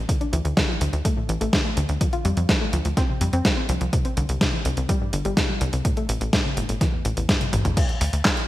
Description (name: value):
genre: italo disco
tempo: 125 BPM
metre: 4/4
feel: straight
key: D minor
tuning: A4 = 440 Hz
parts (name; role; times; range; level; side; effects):
- soft round pluck; arpeggios; 0.0-7.7 s; E2 to F4; -28 LUFS; left 1 dB; chorus, digital delay
- tight sequencer bass; bass; 0.0-8.2 s; G1 to F2; -24 LUFS; equal; none
- clean 12-bit digital drum machine; drums; 0.1-8.5 s; crash cymbal, handclaps, hi-hat, snare drum, toms; -24 LUFS; equal; overdrive
- electronic kick drum; drums; 0.1-8.3 s; none; -24 LUFS; equal; none
room: light reverb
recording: bright 1980s-style digital production, vinyl crackle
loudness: -20 LUFS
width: side -15 dB against mid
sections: 0.0-7.8 A section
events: drum fill 7.4-7.8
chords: 0.1 D5; 2.0 F5; 3.9 Csus2; 5.8 A5; 7.8 D5